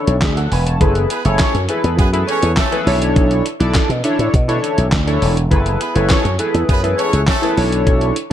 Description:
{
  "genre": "early-eighties boogie funk",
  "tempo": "102 BPM",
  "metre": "4/4",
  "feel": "straight",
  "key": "F# minor",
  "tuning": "A4 = 440 Hz",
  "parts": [
    { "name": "chorused polysynth", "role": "accompaniment", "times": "0.0-8.3 s", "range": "D4 to A5", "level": "-18 LUFS", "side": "left 1 dB", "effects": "none" },
    { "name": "slap bass with an envelope filter", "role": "bass", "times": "0.1-8.1 s", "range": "E1 to B2", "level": "-17 LUFS", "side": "equal", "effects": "none" },
    { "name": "clean 12-bit digital drum machine", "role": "drums", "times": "0.1-8.3 s", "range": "handclaps, hi-hat, kick drum, snare drum", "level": "-18 LUFS", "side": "equal", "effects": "gated reverb" },
    { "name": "clear horn section", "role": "second line", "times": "1.1-7.5 s", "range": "A3 to C#5", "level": "-22 LUFS", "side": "right 1 dB", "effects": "none" }
  ],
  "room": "digital ambience",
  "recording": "none",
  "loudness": "-13 LUFS",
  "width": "side -11 dB against mid",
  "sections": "0.0-8.3 A section",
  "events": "none",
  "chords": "0.0 Bm11; 0.8 F#m11; 2.9 Bm11; 5.5 F#m11; 7.6 Bm11",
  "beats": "0.22 | 0.81 1.40 1.98 2.57 | 3.16 3.75 4.34 4.93 | 5.51 6.10 6.69 7.28 | 7.87"
}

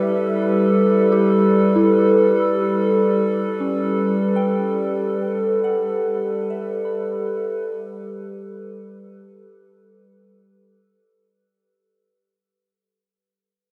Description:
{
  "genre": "ambient",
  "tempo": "free time",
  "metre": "none",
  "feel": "none",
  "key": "unclear",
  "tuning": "A4 = 441 Hz",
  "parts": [
    { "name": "warbly tape-like pad", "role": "sustained chords", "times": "0.0-11.4 s", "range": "G3 to E5", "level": "-20 LUFS", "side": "equal", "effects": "chorus, built-in reverb" },
    { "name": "soft synth bell", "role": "arpeggios", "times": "0.0-11.4 s", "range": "C#4 to B5", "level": "-28 LUFS", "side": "equal", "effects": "chorus, phaser, tape echo" }
  ],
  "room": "wet huge ambient reverb, RT60 7.6 s",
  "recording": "cassette tape",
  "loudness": "-19 LUFS",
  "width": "mono",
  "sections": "0.0-11.4 A section",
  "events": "fade-out on synth bell 0.0-11.4; fade-out 2.1-11.4",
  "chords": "0.0 Gmaj7",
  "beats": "free time"
}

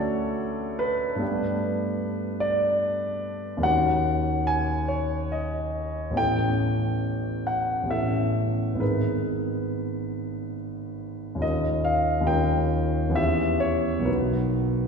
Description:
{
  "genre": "classical, impressionist solo piano",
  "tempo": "66-75 BPM",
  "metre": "3/4",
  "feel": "rubato",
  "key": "unclear",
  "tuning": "A4 = 442 Hz",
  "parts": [
    { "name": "warm concert grand piano", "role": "solo", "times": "0.0-14.9 s", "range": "G#1 to G#5", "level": "-23 LUFS", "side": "equal", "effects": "none" }
  ],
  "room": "wet concert hall reverb, RT60 2.0 s",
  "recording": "heard from further back in the room",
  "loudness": "-23 LUFS",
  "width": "side -5 dB against mid",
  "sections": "0.0-14.9 A section",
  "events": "none",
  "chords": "0.0 Dmaj7; 1.2 Gadd9; 3.7 D#m7; 6.2 A9; 8.8 G#madd9; 11.4 D#9; 13.2 Em6; 14.1 Bmaj7",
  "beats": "0.40 | 1.21 2.03 2.84 | 3.66 4.50 5.32 | 6.16 7.04 7.92 | 8.81 9.69 10.54 | 11.42 12.31 13.18 | 14.08"
}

